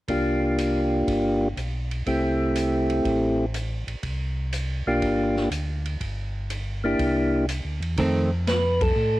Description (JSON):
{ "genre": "soul jazz organ trio", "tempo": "122 BPM", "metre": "4/4", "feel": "swing 69% on 8ths", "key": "unclear", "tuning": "A4 = 440 Hz", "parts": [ { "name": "percussive tonewheel organ", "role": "melody", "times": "0.1-9.2 s", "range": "A3 to B4", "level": "-23 LUFS", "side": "equal", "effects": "slow rotary speaker" }, { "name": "mellow tonewheel organ", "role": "bass", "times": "0.1-9.2 s", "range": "G1 to A2", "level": "-28 LUFS", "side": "equal", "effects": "slow rotary speaker" }, { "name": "swinging big-band drum kit", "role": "drums", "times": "0.1-8.9 s", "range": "hi-hat, kick drum, ride cymbal, snare drum", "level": "-33 LUFS", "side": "equal", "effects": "cassette tape" }, { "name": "hollow-body jazz guitar", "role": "accompaniment", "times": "8.0-8.3 s", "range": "Eb3 to C4", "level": "-23 LUFS", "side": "right 2 dB", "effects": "cassette tape" } ], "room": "light reverb", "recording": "home recording on cassette", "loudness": "-22 LUFS", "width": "side -16 dB against mid", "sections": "0.1-8.0 A section; 8.0-9.2 B section", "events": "band accent 8.7", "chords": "0.1 C7sus4; 2.1 Am7; 4.0 C7sus4; 6.0 Gm; 7.0 C9; 8.0 F7" }